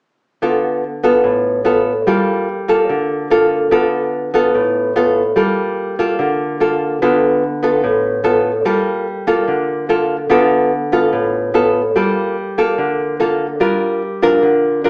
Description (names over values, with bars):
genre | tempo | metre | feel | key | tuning
bossa nova | 146 BPM | 4/4 | straight | D minor | A4 = 440 Hz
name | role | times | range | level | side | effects
nylon-string guitar | accompaniment | 0.4-14.9 s | A2 to Bb4 | -16 LUFS | equal | none
room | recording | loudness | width
wet large studio reverb, RT60 0.9 s | band playing live in one room, small speaker sound | -16 LUFS | mono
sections
0.4-13.6 A section; 13.6-14.9 B section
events
none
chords
0.4 Dm6; 2.1 Gm9; 3.7 Dm6; 5.4 Gm9; 7.0 Dm6; 8.7 Gm9; 10.3 Dm6; 12.0 Gm9; 13.6 Gm7